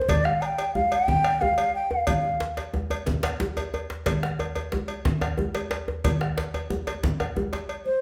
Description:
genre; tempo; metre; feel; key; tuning
west african traditional, West African drum ensemble; 121 BPM (dotted quarters); 12/8; straight; unclear; A4 = 440 Hz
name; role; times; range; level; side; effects
hollow bansuri; melody; 0.0-2.5, 7.9-8.0 s; C5 to Bb5; -26 LUFS; equal; none
djembe; percussion; 0.0-7.7 s; none; -34 LUFS; equal; none
bombo; percussion; 0.1-7.4 s; none; -32 LUFS; equal; none
congas; percussion; 0.1-7.9 s; none; -33 LUFS; equal; none
cowbell; percussion; 0.1-7.8 s; none; -36 LUFS; equal; none
djembe; percussion; 0.1-7.7 s; none; -37 LUFS; equal; none
room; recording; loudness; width
wet large studio reverb, RT60 0.9 s; band playing live in one room; -26 LUFS; mono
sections
0.0-8.0 A section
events
none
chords
none

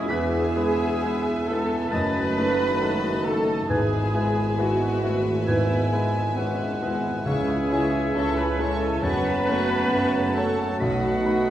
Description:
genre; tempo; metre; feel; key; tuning
classical, romantic movement for piano and orchestra; 67 BPM; 4/4; rubato; unclear; A4 = 444 Hz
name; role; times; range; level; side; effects
warm grand piano; melody; 0.0-11.5 s; B1 to C#5; -27 LUFS; left 1 dB; none
warm symphonic violin section; melody; 0.0-11.5 s; G#5 to C#6; -40 LUFS; left 4 dB; none
mellow concert flute; second line; 0.0-11.5 s; E5 to B5; -34 LUFS; left 1 dB; none
warm symphonic violin section; second line; 0.0-11.5 s; G#4 to A5; -38 LUFS; left 3 dB; none
dark symphonic viola section; accompaniment; 0.0-11.5 s; E4 to B4; -27 LUFS; right 1 dB; none
dark French horn section; sustained chords; 0.0-11.5 s; A3 to F#4; -33 LUFS; left 1 dB; none
mellow trumpet; stabs; 0.0-11.5 s; D#5 to A5; -32 LUFS; equal; none
dark studio cello section; bass; 0.0-11.5 s; E3 to E4; -32 LUFS; right 1 dB; none
warm symphonic double bass section; bass; 0.0-11.5 s; F#1 to E2; -34 LUFS; right 1 dB; none
warm tuba; bass; 0.0-11.5 s; E1 to C#2; -33 LUFS; right 2 dB; none
clear oboe; second line; 0.1-11.5 s; G#5 to B5; -35 LUFS; equal; none
dark clarinet; second line; 0.1-11.5 s; B4 to D#5; -35 LUFS; equal; none
mellow bassoon; accompaniment; 0.1-11.5 s; D#3 to A3; -34 LUFS; right 3 dB; none
dark trombone section; sustained chords; 0.1-11.5 s; B2 to A3; -35 LUFS; right 1 dB; none
timpani; percussion; 3.7-8.6 s; G#2 to C#3; -35 LUFS; equal; none
room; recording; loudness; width
wet recital hall reverb, RT60 1.5 s; heard from further back in the room; -21 LUFS; side -12 dB against mid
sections
0.0-11.5 A section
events
none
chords
0.1 E; 1.9 D#dim/F#; 3.7 E/G#; 7.3 C#m; 9.0 F#m; 10.8 B7

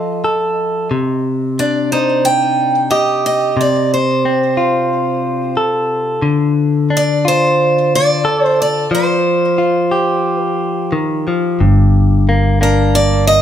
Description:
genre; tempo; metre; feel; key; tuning
acoustic folk-pop ballad; 90 BPM; 4/4; straight; unclear; A4 = 440 Hz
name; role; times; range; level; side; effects
picked steel-string acoustic guitar; melody; 0.0-13.4 s; Bb4 to G5; -16 LUFS; right 2 dB; tape echo
direct-recorded clean electric guitar; accompaniment; 0.0-13.4 s; G2 to A4; -15 LUFS; left 2 dB; none
fingered electric bass; bass; 11.6-13.4 s; G1; -12 LUFS; equal; none
room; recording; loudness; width
moderate large studio reverb, RT60 0.9 s; band playing live in one room; -12 LUFS; side -10 dB against mid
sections
0.0-11.6 A section; 11.6-13.4 B section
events
none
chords
0.0 F; 0.9 Cmadd9; 3.6 F/C; 6.2 Dm; 8.9 Fsus2; 11.6 Gm

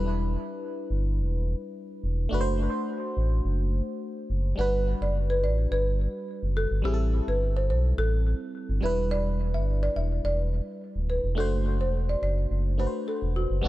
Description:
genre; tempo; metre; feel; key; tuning
afrobeats; 106 BPM; 4/4; straight; G major; A4 = 440 Hz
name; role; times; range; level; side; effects
FM electric piano; accompaniment; 0.0-13.7 s; G3 to C5; -33 LUFS; equal; chorus, phaser, tape echo
sub bass with octave; bass; 0.0-13.7 s; D1 to B1; -26 LUFS; equal; none
folk marimba with medium mallets; melody; 4.6-13.5 s; F#4 to E5; -31 LUFS; equal; tape echo
room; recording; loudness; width
small room ambience; echo-heavy mix; -25 LUFS; side -16 dB against mid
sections
0.0-4.6 A section; 4.6-13.6 B section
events
none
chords
0.0 Em7; 2.3 D7/F#; 4.6 Gmaj7; 6.8 Am7; 8.8 Em7; 11.4 D7

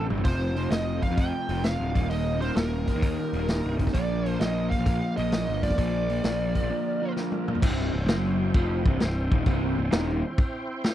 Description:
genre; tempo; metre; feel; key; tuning
blues rock power trio and southern rock; 130 BPM; 4/4; swing 68% on 8ths; unclear; A4 = 441 Hz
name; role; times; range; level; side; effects
bluesy overdriven lead guitar; melody; 0.0-7.1 s; Bb4 to G5; -31 LUFS; right 3 dB; distortion
overdriven tonewheel organ; sustained chords; 0.0-10.9 s; D3 to G5; -39 LUFS; right 3 dB; slow rotary speaker, chorus vibrato
crunchy overdriven guitar; riff; 0.0-10.2 s; C2 to Bb3; -30 LUFS; left 1 dB; none
fuzz picked electric bass; bass; 0.0-10.2 s; C1 to F2; -28 LUFS; equal; overdrive
vintage drum kit; drums; 0.1-10.9 s; crash cymbal, hi-hat, kick drum, snare drum, toms; -26 LUFS; equal; none
room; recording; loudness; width
little or no reverb; dry, close 1970s-style studio recording; -23 LUFS; side -12 dB against mid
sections
0.0-7.6 A section; 7.6-10.9 B section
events
drum fill 0.0, 7.2-7.6; break 6.7-7.6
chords
0.3 F; 1.9 Eb; 3.9 Bb; 7.6 C

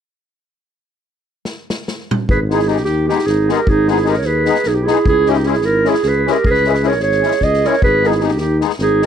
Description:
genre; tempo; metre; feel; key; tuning
balkan folk, Balkan wedding band; 303 BPM (eighths); 7/8; straight; G# harmonic minor; A4 = 440 Hz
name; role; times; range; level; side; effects
street-band drum kit; percussion; 1.5-9.1 s; kick drum, snare drum, toms; -22 LUFS; equal; none
mellow clarinet; melody; 2.3-9.1 s; G4 to D#5; -16 LUFS; right 2 dB; none
warm clarinet; second line; 2.3-9.1 s; D#4 to A#4; -20 LUFS; right 5 dB; none
mellow tuba; bass; 2.3-9.0 s; G#1 to D#2; -19 LUFS; left 1 dB; none
musette accordion; accompaniment; 2.5-9.1 s; G#3 to G#4; -19 LUFS; left 13 dB; none
room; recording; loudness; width
studio ambience; dry, close 1970s-style studio recording; -13 LUFS; side -8 dB against mid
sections
0.9-2.3 A section; 2.3-9.1 B section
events
drum fill 1.5-2.3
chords
0.9 N.C.; 2.3 G#m; 5.1 C#m; 7.8 G#m

